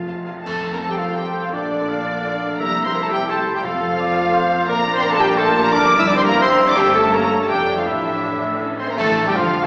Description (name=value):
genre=classical, dramatic, fast romantic movement for symphony orchestra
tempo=170 BPM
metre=3/4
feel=rubato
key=F major, D minor from 4.7 s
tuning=A4 = 440 Hz
part: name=rich studio violin section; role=melody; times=0.0-9.7 s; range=D5 to E6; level=-26 LUFS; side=equal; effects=none
part: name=clear clarinet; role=second line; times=0.0-9.7 s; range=D4 to E5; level=-27 LUFS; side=equal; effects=none
part: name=concert harp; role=arpeggios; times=0.0-9.7 s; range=F2 to A5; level=-31 LUFS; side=equal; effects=none
part: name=dark symphonic violin section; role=second line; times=0.1-9.7 s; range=F4 to E6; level=-30 LUFS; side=equal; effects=none
part: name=rich symphonic viola section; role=accompaniment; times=0.1-9.7 s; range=F3 to Bb4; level=-29 LUFS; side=equal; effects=none
part: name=rich symphonic cello section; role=bass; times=0.1-9.7 s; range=F2 to C4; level=-32 LUFS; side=equal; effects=none
part: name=warm symphonic double bass section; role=bass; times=0.1-9.7 s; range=F1 to C2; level=-35 LUFS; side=equal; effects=none
part: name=mellow hollow silver concert flute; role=second line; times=0.5-9.7 s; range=D5 to E6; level=-27 LUFS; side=equal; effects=none
part: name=dark French horn section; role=sustained chords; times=0.5-9.7 s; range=D3 to E4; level=-28 LUFS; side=equal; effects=none
part: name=clash cymbals, concert bass drum and cymbal swell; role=percussion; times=0.5-1.1, 6.8-9.7 s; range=none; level=-36 LUFS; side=equal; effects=none
part: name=warm oboe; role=second line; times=0.8-9.7 s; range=A4 to A5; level=-26 LUFS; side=equal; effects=none
part: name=mellow trumpet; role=stabs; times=8.8-9.7 s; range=F4 to C5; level=-26 LUFS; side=equal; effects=none
part: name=warm bassoon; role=accompaniment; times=9.0-9.7 s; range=F3 to A3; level=-28 LUFS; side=equal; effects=none
room=wet scoring stage reverb, RT60 1.8 s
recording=heard from further back in the room, small speaker sound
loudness=-18 LUFS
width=mono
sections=0.5-9.0 A section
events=band accent 0.5-0.8, 9.0-9.4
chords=0.5 F; 1.5 Bbmaj7; 2.6 C; 3.6 F; 4.7 Bb; 5.7 Em7b5/G; 6.8 A7/G; 7.5 Dm/F; 7.9 Asus4; 8.6 A; 9.0 Dm